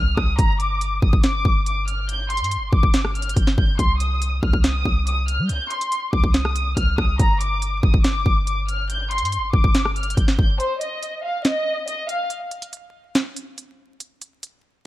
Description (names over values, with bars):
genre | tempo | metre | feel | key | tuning
hip hop, trap | 141 BPM | 4/4 | half-time | unclear | A4 = 442 Hz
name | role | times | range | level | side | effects
warm studio violin section | melody | 0.0-12.3 s | C5 to G6 | -24 LUFS | left 1 dB | low-pass filter
clean 808-style bass | bass | 0.0-10.6 s | G1 to G3 | -23 LUFS | equal | none
trap drum kit | drums | 0.2-14.5 s | hi-hat, kick drum, rim click, snare drum | -20 LUFS | equal | none
room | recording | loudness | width
little or no reverb | vinyl crackle | -18 LUFS | side -15 dB against mid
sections
0.0-10.6 A section; 10.6-14.9 B section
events
break 10.6-14.9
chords
0.4 G5; 3.8 Cm; 7.2 G5; 10.6 N.C.